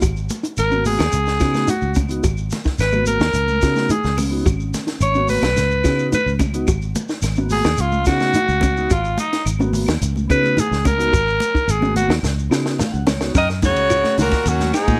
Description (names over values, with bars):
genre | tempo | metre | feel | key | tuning
afrobeat | 108 BPM | 4/4 | straight | G# dorian | A4 = 442 Hz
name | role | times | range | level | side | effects
mellow tonewheel organ | accompaniment | 0.0-13.4 s | A#3 to F#5 | -28 LUFS | equal | slow rotary speaker
handpan | arpeggios | 0.0-14.8 s | G#3 to F#4 | -27 LUFS | equal | none
fingered electric bass | bass | 0.0-15.0 s | G#1 to C#3 | -24 LUFS | equal | none
compact cocktail drum kit | drums | 0.0-15.0 s | hi-hat, kick drum, ride cymbal, snare drum | -26 LUFS | equal | none
claves | percussion | 0.0-14.9 s | none | -40 LUFS | equal | none
shekere | percussion | 0.0-15.0 s | none | -32 LUFS | equal | none
congas | percussion | 0.3-15.0 s | none | -29 LUFS | equal | none
raspy tenor saxophone | melody | 0.6-12.1 s | D#4 to C#5 | -22 LUFS | equal | none
breathy alto saxophone | melody | 13.4-15.0 s | F#4 to D#5 | -21 LUFS | equal | slapback echo
bright baritone saxophone | second line | 13.4-15.0 s | F#2 to D#3 | -29 LUFS | equal | none
bright trumpet | second line | 13.4-15.0 s | C#4 to A#4 | -29 LUFS | equal | none
room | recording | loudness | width
light reverb, small room reverb | none | -19 LUFS | mono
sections
0.0-13.4 A section; 13.4-15.0 B section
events
tenor saxophone solo 0.0-13.4; drum fill 12.2-13.4; tonewheel organ fill 12.5-13.4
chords
0.0 G#m7; 1.1 C#9sus4; 2.2 G#m7; 3.4 C#9sus4; 4.5 G#m7; 5.6 C#9sus4; 6.7 G#m7; 7.8 C#9sus4; 8.9 G#m7; 10.0 C#9sus4; 11.1 G#m7; 12.2 C#9sus4; 13.4 F#6